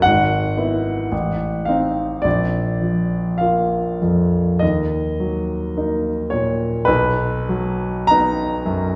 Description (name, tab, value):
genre	classical, romantic nocturne for solo piano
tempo	46-59 BPM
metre	4/4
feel	rubato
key	Eb minor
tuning	A4 = 440 Hz
part	warm concert grand piano	solo	0.0-9.0 s	G#1 to Bb5	-20 LUFS	equal	none
room	wet recital hall reverb, RT60 1.4 s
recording	recorded in a church or concert hall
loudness	-20 LUFS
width	mono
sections	0.0-9.0 A section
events	none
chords	0.1 E/G#; 1.1 Adim7; 2.3 Bb; 4.6 Ebm; 6.9 B